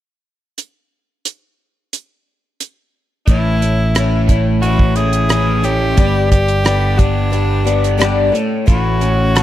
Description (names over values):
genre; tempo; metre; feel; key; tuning
folk rock and heartland rock; 89 BPM; 4/4; straight; unclear; A4 = 440 Hz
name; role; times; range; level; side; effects
damped 70s drum kit; drums; 0.6-9.4 s; hi-hat, kick drum, rim click; -14 LUFS; right 1 dB; none
edgy tenor saxophone; melody; 3.3-9.4 s; D4 to G#4; -20 LUFS; right 1 dB; none
picked twelve-string acoustic guitar; accompaniment; 3.3-9.4 s; G2 to A4; -20 LUFS; left 7 dB; none
crunchy overdriven guitar; riff; 3.3-9.4 s; A2 to A4; -21 LUFS; right 1 dB; phaser
picked electric bass; bass; 3.3-9.4 s; G1 to A1; -16 LUFS; equal; none
room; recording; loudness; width
studio ambience; dry, close 1970s-style studio recording; -12 LUFS; side -13 dB against mid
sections
0.6-3.3 A section; 3.3-8.7 B section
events
none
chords
0.6 N.C.; 3.3 A; 6.0 G; 8.3 A